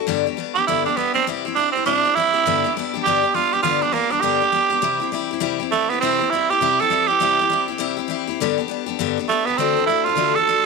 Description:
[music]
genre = rock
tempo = 202 BPM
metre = 4/4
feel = swing 62% on 8ths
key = G major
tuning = A4 = 441 Hz
[part]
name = picked steel-string acoustic guitar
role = accompaniment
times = 0.0-10.7 s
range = G2 to A4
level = -22 LUFS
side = left 16 dB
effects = none
[part]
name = growling tenor saxophone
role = melody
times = 0.5-10.7 s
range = A3 to A4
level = -18 LUFS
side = right 8 dB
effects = tape echo
[sound]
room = moderate plate reverb, RT60 2.8 s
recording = 1960s-style stereo with parts hard left and right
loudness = -17 LUFS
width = side -4 dB against mid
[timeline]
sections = 0.1-10.7 A section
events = tenor saxophone solo 0.1-10.7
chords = 0.1 G; 1.3 C; 2.5 G; 4.8 C; 8.4 G; 9.6 D

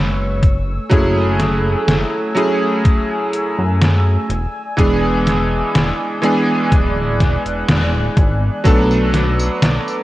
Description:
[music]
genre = vaporwave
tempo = 62 BPM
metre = 4/4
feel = straight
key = F# minor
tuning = A4 = 440 Hz
[part]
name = bright electric grand piano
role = accompaniment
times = 0.0-10.0 s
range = E3 to B4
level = -18 LUFS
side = right 1 dB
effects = analog chorus, analog delay
[part]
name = warbly tape-like pad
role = sustained chords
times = 0.0-10.0 s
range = A3 to F#6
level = -25 LUFS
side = equal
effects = chorus, built-in reverb, phaser, vintage 12-bit sampler grit
[part]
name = chorused synth bass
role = bass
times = 0.0-9.8 s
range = D1 to F#2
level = -18 LUFS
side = equal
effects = tube saturation
[part]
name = detuned 8-bit digital drum machine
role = drums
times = 0.4-10.0 s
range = hi-hat, snare drum, tambourine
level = -18 LUFS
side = equal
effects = overdrive, vintage 12-bit sampler grit
[part]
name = electronic kick drum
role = drums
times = 0.4-8.9 s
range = none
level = -14 LUFS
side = equal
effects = overdrive, vintage 12-bit sampler grit
[sound]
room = light reverb, digital ambience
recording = cassette tape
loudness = -13 LUFS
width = side -16 dB against mid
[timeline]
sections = 0.0-8.7 A section; 8.7-10.0 B section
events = band accent 7.7-8.2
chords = 0.4 F#m9; 4.3 E7; 8.7 Bm7

